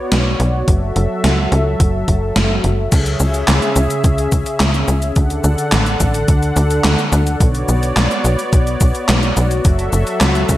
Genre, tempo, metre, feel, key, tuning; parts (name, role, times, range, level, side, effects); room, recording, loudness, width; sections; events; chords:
synthwave; 107 BPM; 4/4; straight; C# phrygian; A4 = 440 Hz
warm analog pad; sustained chords; 0.0-10.6 s; C#3 to F#5; -20 LUFS; equal; chorus, sidechain pumping
tight sequencer bass; bass; 0.1-10.6 s; F#1 to D2; -16 LUFS; equal; tube saturation, sidechain pumping
gated 80s digital drum machine; drums; 0.1-10.6 s; crash cymbal, handclaps, hi-hat, shaker, snare drum; -19 LUFS; equal; gated reverb, gated reverb snare, overdrive
electronic kick drum; drums; 0.7-10.6 s; -15 LUFS; equal; overdrive
moderate recital hall reverb, RT60 1.3 s; -13 LUFS; side -15 dB against mid
0.0-2.9 A section; 2.9-10.6 B section
0.0 Bmadd9; 0.7 F#m7; 2.9 C#m; 5.2 D; 7.4 Bmadd9; 9.7 F#m7